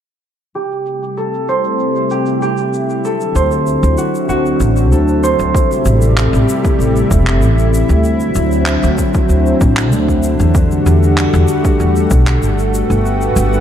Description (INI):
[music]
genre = sunset chillout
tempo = 96 BPM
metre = 4/4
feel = straight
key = A dorian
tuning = A4 = 443 Hz
[part]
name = lush unison pad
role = sustained chords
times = 0.5-13.6 s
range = C3 to G4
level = -16 LUFS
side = left 1 dB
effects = chorus
[part]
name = shaker and handclaps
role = drums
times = 0.5-13.6 s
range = none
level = -24 LUFS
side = equal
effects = low-pass filter on perc, low-pass filter on snare, low-pass filter on room
[part]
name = concert harp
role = arpeggios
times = 0.6-7.2 s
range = F#4 to C5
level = -18 LUFS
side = right 2 dB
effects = low-pass filter, tape echo
[part]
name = upright bass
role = bass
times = 3.4-13.6 s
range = E1 to E2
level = -14 LUFS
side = equal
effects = none
[part]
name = electronic kick drum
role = drums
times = 5.5-12.2 s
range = none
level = -14 LUFS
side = equal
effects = none
[sound]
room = moderate plate reverb, RT60 2.2 s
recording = dreamy mix soaked in reverb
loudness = -11 LUFS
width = side -9 dB against mid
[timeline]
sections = 0.5-5.5 A section; 5.5-13.6 B section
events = filter sweep on analog synth pad 0.5-5.5; filter sweep on harp 0.5-5.5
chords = 0.5 Am7; 3.0 D9; 5.5 Am7; 8.0 D9; 10.5 Em11; 12.7 Gmaj9